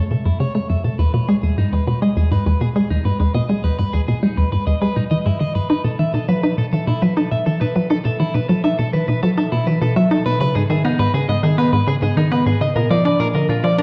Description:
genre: ambient, sequencer-driven space music.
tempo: 102 BPM.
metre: 4/4.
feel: straight.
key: unclear.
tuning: A4 = 440 Hz.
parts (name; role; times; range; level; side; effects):
electric guitar at the edge of break-up; arpeggios; 0.0-13.8 s; D#4 to E5; -26 LUFS; equal; delay.
resonant blip pluck; riff; 0.0-13.8 s; E2 to D#4; -19 LUFS; equal; chorus, delay.
room: wet concert hall reverb, RT60 2.3 s.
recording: dark, warm production.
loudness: -18 LUFS.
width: mono.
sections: 0.0-13.8 A section.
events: fade-in on clean electric guitar 0.0-13.8; filter sweep on synth arpeggio sound 0.0-13.8.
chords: 0.0 F#m7; 1.0 Emaj7; 5.7 B7sus4; 10.4 G#m; 12.8 A#.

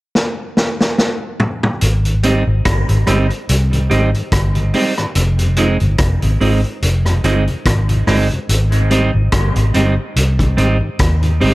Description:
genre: dub reggae.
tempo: 72 BPM.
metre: 4/4.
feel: swing 56% on 16ths.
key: Ab major.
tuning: A4 = 442 Hz.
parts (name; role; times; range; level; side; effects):
vintage drum kit; drums; 0.2-11.5 s; hi-hat, kick drum, rim click, snare drum, toms; -18 LUFS; equal; none.
vintage muted fingered electric bass; bass; 1.8-11.5 s; F1 to Eb2; -14 LUFS; equal; none.
mellow tonewheel organ; accompaniment; 2.1-11.5 s; F2 to G4; -23 LUFS; left 1 dB; chorus vibrato, stopped rotary speaker, dub echo.
clean electric guitar; accompaniment; 2.2-11.5 s; G3 to Eb4; -20 LUFS; right 3 dB; dub echo.
room: light reverb, studio reverb.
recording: none.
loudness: -13 LUFS.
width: side -19 dB against mid.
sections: 0.0-1.8 A section; 1.8-11.5 B section.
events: drum fill 0.1-1.8.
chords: 0.0 N.C.; 1.8 Abmaj7; 5.2 Fm7; 8.5 Abmaj7.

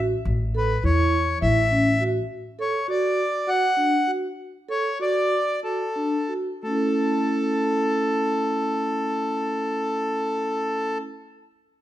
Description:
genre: contemporary instrumental, chamber music in an uneven meter.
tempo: 176-206 BPM (eighths).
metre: 7/8.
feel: straight.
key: A major.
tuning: A4 = 441 Hz.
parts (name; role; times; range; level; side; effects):
vibraphone with soft mallets; arpeggios; 0.0-11.1 s; A3 to A4; -26 LUFS; right 2 dB; none.
upright bass; bass; 0.0-2.2 s; A1 to E2; -23 LUFS; left 1 dB; none.
accordion; melody; 0.6-11.0 s; A4 to F#5; -24 LUFS; left 1 dB; none.
room: moderate recital hall reverb, RT60 1.5 s.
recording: minimal, uncompressed stereo recording.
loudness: -21 LUFS.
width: side -13 dB against mid.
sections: 0.0-6.6 A section; 6.6-11.4 B section.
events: slowing down 2.3-6.6.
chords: 0.0 A; 2.3 D; 6.6 A.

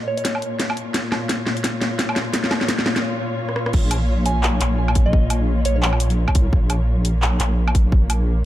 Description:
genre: half-time drum and bass.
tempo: 172 BPM.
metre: 4/4.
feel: swing 58% on 16ths, half-time.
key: Bb minor.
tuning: A4 = 441 Hz.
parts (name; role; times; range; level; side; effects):
muted studio string section; sustained chords; 0.0-8.4 s; Bb2 to Db5; -26 LUFS; left 2 dB; sidechain pumping.
soft synth bell; melody; 0.1-0.2, 4.3-5.8 s; Db5 to Ab5; -28 LUFS; right 3 dB; chorus, vintage 12-bit sampler grit, low-pass filter, digital delay.
drum and bass drum kit; drums; 0.2-8.2 s; crash cymbal, handclaps, hi-hat, rim click, snare drum, woodblock; -22 LUFS; equal; none.
electronic kick drum; drums; 0.2-8.0 s; none; -18 LUFS; equal; high-pass filter on kick, high-pass filter on room.
deep soft wobble bass; bass; 3.7-8.4 s; Bb1 to C2; -19 LUFS; equal; chorus, tube saturation.
room: light reverb, digital ambience.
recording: none.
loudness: -17 LUFS.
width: side -14 dB against mid.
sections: 0.0-3.7 A section; 3.7-8.4 B section.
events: build-up 0.0-3.7; drum fill 0.0-3.0, 3.5; break 3.0-3.7; drop 3.7-8.4.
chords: 0.0 Bbm.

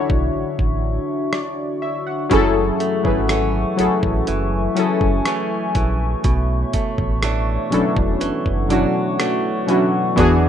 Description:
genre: contemporary R&B.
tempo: 61 BPM.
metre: 4/4.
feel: straight.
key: unclear.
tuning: A4 = 441 Hz.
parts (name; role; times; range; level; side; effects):
warm analog keys; accompaniment; 0.0-10.5 s; B2 to F#5; -19 LUFS; left 2 dB; chorus.
hollow soft pad; sustained chords; 0.0-10.5 s; A3 to D6; -25 LUFS; left 2 dB; chorus, sidechain pumping.
sub bass with octave; bass; 0.1-10.5 s; E1 to E2; -22 LUFS; equal; none.
dusty soul sampler-style drum kit; drums; 0.1-10.4 s; hi-hat, kick drum, rim click; -22 LUFS; equal; none.
direct-recorded clean electric guitar; arpeggios; 2.3-10.5 s; F#2 to D4; -26 LUFS; right 6 dB; digital delay.
room: moderate studio reverb, RT60 0.6 s.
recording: rough home demo mix.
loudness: -17 LUFS.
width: side -9 dB against mid.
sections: 0.0-10.5 A section.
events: break 0.0-2.3.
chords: 0.0 Dmaj9; 2.3 F#m7; 6.2 Bm11.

